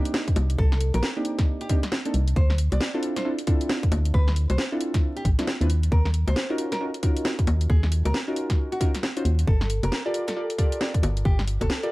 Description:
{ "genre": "UK garage, two-step garage", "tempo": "135 BPM", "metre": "4/4", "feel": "swing 61% on 16ths", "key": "C dorian", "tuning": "A4 = 445 Hz", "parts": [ { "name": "deep mellow chord stab", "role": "stabs", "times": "0.0-11.9 s", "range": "Bb3 to D5", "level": "-29 LUFS", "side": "equal", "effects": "chorus, digital delay" }, { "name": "garage drum kit", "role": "drums", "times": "0.1-11.9 s", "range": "bongos, hi-hat, snare drum", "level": "-29 LUFS", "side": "equal", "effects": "none" }, { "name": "electronic kick drum", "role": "drums", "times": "0.3-11.7 s", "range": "none", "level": "-22 LUFS", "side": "equal", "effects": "none" }, { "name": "organ-like FM bass", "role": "bass", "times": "0.4-11.7 s", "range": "F1 to Eb2", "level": "-22 LUFS", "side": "equal", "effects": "none" }, { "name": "nylon-string guitar", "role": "melody", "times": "0.6-11.7 s", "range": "Gb4 to D5", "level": "-33 LUFS", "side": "equal", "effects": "digital delay" } ], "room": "little or no reverb", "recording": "vinyl crackle", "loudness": "-21 LUFS", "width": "side -20 dB against mid", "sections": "0.0-11.9 A section", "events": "none", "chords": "0.0 Cm9; 2.4 Dm9; 5.7 Ebm9; 9.5 Gm9" }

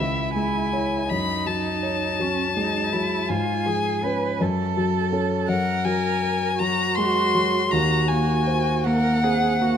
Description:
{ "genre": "classical, slow romantic movement for piano trio", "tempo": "54 BPM (dotted quarters)", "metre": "6/8", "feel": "rubato", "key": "unclear", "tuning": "A4 = 440 Hz", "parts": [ { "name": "rich violin", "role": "melody", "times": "0.0-9.8 s", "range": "E5 to C6", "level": "-24 LUFS", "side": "left 5 dB", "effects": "none" }, { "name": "rich cello", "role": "second line", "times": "0.0-9.8 s", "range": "C#4 to B4", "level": "-28 LUFS", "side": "right 9 dB", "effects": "none" }, { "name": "dark baby grand piano", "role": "accompaniment", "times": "0.0-9.8 s", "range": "C#2 to C#5", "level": "-23 LUFS", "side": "left 1 dB", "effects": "none" } ], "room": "moderate recital hall reverb, RT60 1.4 s", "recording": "close, detailed microphones", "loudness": "-20 LUFS", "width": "side -8 dB against mid", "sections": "0.0-9.8 A section", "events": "none", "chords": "0.0 C#m; 1.1 F#m; 3.3 C#7/G#; 4.4 F#m; 5.5 Gb; 7.7 Cm7b5/Eb" }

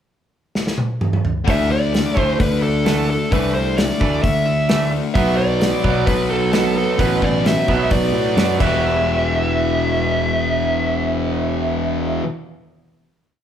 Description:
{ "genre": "quiet-loud alternative rock", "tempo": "131 BPM", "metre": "4/4", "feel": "straight", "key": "E minor", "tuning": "A4 = 440 Hz", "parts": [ { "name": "loose indie drum kit", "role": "drums", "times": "0.6-8.7 s", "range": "crash cymbal, hi-hat, kick drum, snare drum, toms", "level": "-21 LUFS", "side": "equal", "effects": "none" }, { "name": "fuzz guitar", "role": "riff", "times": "1.4-12.3 s", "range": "E2 to D4", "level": "-23 LUFS", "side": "left 8 dB", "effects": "distortion" }, { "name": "bluesy overdriven lead guitar", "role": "melody", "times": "1.5-12.2 s", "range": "A4 to E5", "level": "-21 LUFS", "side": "right 1 dB", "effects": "distortion" }, { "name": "twangy electric guitar", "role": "arpeggios", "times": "1.5-12.2 s", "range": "B2 to F#4", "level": "-28 LUFS", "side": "right 7 dB", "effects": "none" }, { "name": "fuzz picked electric bass", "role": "bass", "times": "1.5-12.2 s", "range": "E1 to A2", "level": "-22 LUFS", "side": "equal", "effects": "overdrive" }, { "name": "fuzz guitar", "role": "riff", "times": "5.2-12.3 s", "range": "E2 to B3", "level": "-24 LUFS", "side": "right 6 dB", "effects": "distortion" } ], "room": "moderate large studio reverb, RT60 1.2 s", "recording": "band playing live in one room", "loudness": "-16 LUFS", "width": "side -9 dB against mid", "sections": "0.0-1.5 pickup bar; 1.5-8.8 pre-chorus; 8.8-12.5 final hit", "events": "drum fill 0.6-1.5", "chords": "0.0 N.C.; 1.5 Dsus2; 5.2 Bm; 8.6 Emadd9" }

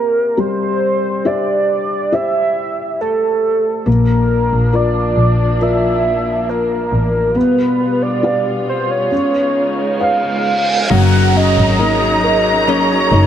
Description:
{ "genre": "pop ballad", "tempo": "68 BPM", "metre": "4/4", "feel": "straight", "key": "unclear", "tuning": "A4 = 443 Hz", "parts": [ { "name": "warm velvety synth lead", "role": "melody", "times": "0.0-13.3 s", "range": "A4 to Gb5", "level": "-17 LUFS", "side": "right 2 dB", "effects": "chorus" }, { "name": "felt-muted upright piano", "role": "accompaniment", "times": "0.0-13.3 s", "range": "Gb3 to F5", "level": "-19 LUFS", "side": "left 3 dB", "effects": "none" }, { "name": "dark studio string section", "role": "sustained chords", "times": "3.9-13.3 s", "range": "B2 to Bb4", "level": "-22 LUFS", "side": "equal", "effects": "none" }, { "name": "warm double bass", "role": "bass", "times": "3.9-13.3 s", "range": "Gb1 to Bb1", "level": "-16 LUFS", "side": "equal", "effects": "none" }, { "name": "reverse cymbal and downlifter", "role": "sound effects", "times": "9.9-13.3 s", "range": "none", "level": "-23 LUFS", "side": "right 1 dB", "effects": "none" }, { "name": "warm studio violin section", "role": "second line", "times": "10.9-13.3 s", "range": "Bb5", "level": "-18 LUFS", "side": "left 1 dB", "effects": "none" }, { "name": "flamenco guitar", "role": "arpeggios", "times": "10.9-13.3 s", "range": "Gb3 to Eb5", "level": "-21 LUFS", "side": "left 7 dB", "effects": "none" } ], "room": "light reverb, studio reverb", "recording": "none", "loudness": "-13 LUFS", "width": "side -10 dB against mid", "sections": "0.0-10.9 A section; 10.9-13.3 B section", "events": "reverse cymbal 9.9-10.9", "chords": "0.0 C; 3.9 Bb; 7.4 G7/B; 9.1 Db7; 10.9 Gb6" }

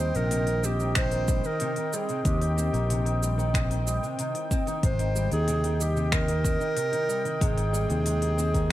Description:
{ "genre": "folktronica", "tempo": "93 BPM", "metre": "4/4", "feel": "straight", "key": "Eb major", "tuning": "A4 = 444 Hz", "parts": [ { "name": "warm clarinet", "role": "melody", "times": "0.0-8.7 s", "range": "G4 to C5", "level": "-30 LUFS", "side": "right 2 dB", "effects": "ping-pong delay" }, { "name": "vibraphone with soft mallets", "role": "second line", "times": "0.0-8.7 s", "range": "Eb5 to Eb6", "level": "-33 LUFS", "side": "equal", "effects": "ping-pong delay" }, { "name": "warm analog pad", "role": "sustained chords", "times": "0.0-8.7 s", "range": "C3 to G5", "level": "-36 LUFS", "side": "equal", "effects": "chorus" }, { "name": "nylon-string guitar", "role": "arpeggios", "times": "0.0-8.7 s", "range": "C3 to C4", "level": "-34 LUFS", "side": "left 2 dB", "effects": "ping-pong delay" }, { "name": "fingered electric bass", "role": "bass", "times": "0.0-8.7 s", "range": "Ab1 to Eb2", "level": "-26 LUFS", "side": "equal", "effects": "none" }, { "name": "organic electronic drum kit", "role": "drums", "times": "0.1-8.7 s", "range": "cabasa, finger snaps, hi-hat", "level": "-33 LUFS", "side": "equal", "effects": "none" }, { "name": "electronic kick drum", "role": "drums", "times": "1.0-8.7 s", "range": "none", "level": "-27 LUFS", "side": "equal", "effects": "none" } ], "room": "light reverb", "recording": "none", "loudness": "-24 LUFS", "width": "side -14 dB against mid", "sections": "0.0-8.7 A section", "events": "none", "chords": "0.0 Eb6; 4.8 Abmaj7" }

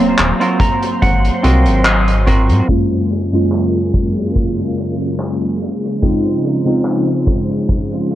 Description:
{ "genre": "vaporwave", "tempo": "72 BPM", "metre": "4/4", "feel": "straight", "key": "unclear", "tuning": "A4 = 438 Hz", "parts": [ { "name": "warbly lo-fi synth keys", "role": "accompaniment", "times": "0.0-8.2 s", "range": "Gb2 to F5", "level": "-18 LUFS", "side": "equal", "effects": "lush chorus, dub echo" }, { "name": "soft string machine", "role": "sustained chords", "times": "0.0-8.2 s", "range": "Db3 to C6", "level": "-20 LUFS", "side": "equal", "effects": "ensemble chorus" }, { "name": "chorused synth bass", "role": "bass", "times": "0.0-2.6 s", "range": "Eb1 to Ab2", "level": "-14 LUFS", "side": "equal", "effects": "none" }, { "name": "semi-hollow electric guitar", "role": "riff", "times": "0.2-2.7 s", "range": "C4 to Bb5", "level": "-18 LUFS", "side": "right 2 dB", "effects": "lush chorus, vintage 12-bit sampler grit, dub echo" }, { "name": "loose indie drum kit", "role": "drums", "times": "0.2-8.2 s", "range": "handclaps, hi-hat", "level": "-22 LUFS", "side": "equal", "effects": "low-pass filter on hats, vintage 12-bit sampler grit, low-pass filter on snare, low-pass filter on room" }, { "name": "kick drum", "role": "drums", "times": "0.6-7.9 s", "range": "none", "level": "-17 LUFS", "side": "equal", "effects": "vintage 12-bit sampler grit" } ], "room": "light reverb, studio reverb", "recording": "echo-heavy mix, cassette tape, low-pass filter", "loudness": "-13 LUFS", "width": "side -13 dB against mid", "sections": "0.0-2.7 A section; 2.7-8.2 B section", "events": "clean electric guitar fill 0.2-2.7; band accent 1.9-2.3; filter sweep 2.7-8.2", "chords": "0.0 Ab13; 2.7 Gbmaj9; 5.6 Dbmaj9" }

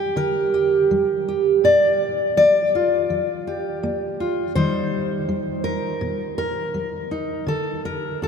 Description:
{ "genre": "folk, solo fingerstyle acoustic guitar", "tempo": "82 BPM", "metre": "4/4", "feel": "rubato", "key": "unclear", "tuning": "A4 = 443 Hz", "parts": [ { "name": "fingerpicked steel-string acoustic guitar", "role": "solo", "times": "0.0-8.3 s", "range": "Bb2 to D5", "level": "-19 LUFS", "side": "equal", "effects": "none" } ], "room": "wet cathedral reverb, RT60 6.3 s", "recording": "in a vast, echoing space", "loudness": "-19 LUFS", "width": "side -6 dB against mid", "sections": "0.0-8.3 A section", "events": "none", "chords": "0.0 Gm; 1.6 Bb6; 4.6 Eb; 7.5 D5" }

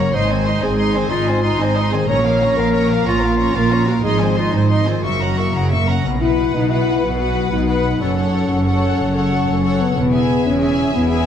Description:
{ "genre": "cinematic, heroic adventure film score", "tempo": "123 BPM (dotted quarters)", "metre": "12/8", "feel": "straight", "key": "Ab mixolydian", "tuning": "A4 = 440 Hz", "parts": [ { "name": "warm symphonic violin section", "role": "melody", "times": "0.0-11.3 s", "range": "F5 to Db6", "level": "-26 LUFS", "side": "left 2 dB", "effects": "none" }, { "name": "mellow clarinet", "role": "second line", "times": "0.0-5.9 s", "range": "Eb4 to Db5", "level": "-21 LUFS", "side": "left 1 dB", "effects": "none" }, { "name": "warm symphonic violin section", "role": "second line", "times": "0.0-11.3 s", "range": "Bb4 to Gb5", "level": "-26 LUFS", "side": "left 1 dB", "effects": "none" }, { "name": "warm symphonic viola section", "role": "accompaniment", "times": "0.0-11.3 s", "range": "Bb3 to B4", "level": "-26 LUFS", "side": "right 1 dB", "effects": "none" }, { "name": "concert harp", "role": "arpeggios", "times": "0.0-11.3 s", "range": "E2 to B4", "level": "-25 LUFS", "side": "left 7 dB", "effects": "none" }, { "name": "rich symphonic cello section", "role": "bass", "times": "0.0-11.3 s", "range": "E2 to Db3", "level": "-22 LUFS", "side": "right 2 dB", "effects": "none" }, { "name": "warm studio double bass section", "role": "bass", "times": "0.0-11.3 s", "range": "E1 to B1", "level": "-22 LUFS", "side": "right 3 dB", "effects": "none" }, { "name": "mellow French horn section", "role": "sustained chords", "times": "5.9-11.3 s", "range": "Bb3 to F#4", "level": "-19 LUFS", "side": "left 2 dB", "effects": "none" } ], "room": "wet scoring stage reverb, RT60 1.6 s", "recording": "none", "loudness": "-15 LUFS", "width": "side -9 dB against mid", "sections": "0.0-6.0 A section; 6.0-11.3 B section", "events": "none", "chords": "0.1 Ab; 2.1 Bbm; 4.0 Ab; 5.0 Gb7; 6.0 Bsus4; 8.0 F#m; 10.0 E" }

